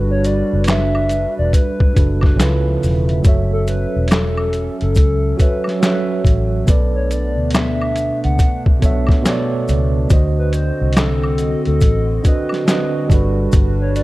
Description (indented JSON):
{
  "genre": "lo-fi hip hop",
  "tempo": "70 BPM",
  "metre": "4/4",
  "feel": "swing 64% on 16ths",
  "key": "F# phrygian",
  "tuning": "A4 = 440 Hz",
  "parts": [
    { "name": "tine electric piano", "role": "accompaniment", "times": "0.0-14.0 s", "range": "B2 to E5", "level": "-21 LUFS", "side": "right 3 dB", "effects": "fast stereo tremolo, cassette tape, low-pass filter" },
    { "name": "hollow soft pad", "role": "sustained chords", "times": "0.0-14.0 s", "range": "C#3 to E5", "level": "-26 LUFS", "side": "equal", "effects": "chorus, low-pass filter" },
    { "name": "vintage muted fingered electric bass", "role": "bass", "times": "0.0-14.0 s", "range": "E1 to D2", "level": "-18 LUFS", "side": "equal", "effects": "none" },
    { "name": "hollow clarinet-like synth lead", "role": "melody", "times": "0.1-14.0 s", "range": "A4 to F#5", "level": "-24 LUFS", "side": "left 1 dB", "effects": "chorus, low-pass filter, tape echo" },
    { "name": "boom bap sampler-style drum kit", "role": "drums", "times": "0.2-14.0 s", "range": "handclaps, hi-hat, kick drum, snare drum", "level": "-15 LUFS", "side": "equal", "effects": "none" },
    { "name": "maracas and woodblock", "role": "percussion", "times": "0.2-14.0 s", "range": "none", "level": "-31 LUFS", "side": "left 1 dB", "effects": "none" }
  ],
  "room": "little or no reverb",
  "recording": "dark, warm production",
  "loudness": "-14 LUFS",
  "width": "side -18 dB against mid",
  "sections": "0.0-14.0 A section",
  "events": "none",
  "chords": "0.0 Gmaj7; 2.4 C#7alt; 3.2 F#m7; 6.7 Bm9; 10.1 D7b9; 13.1 Gmaj7"
}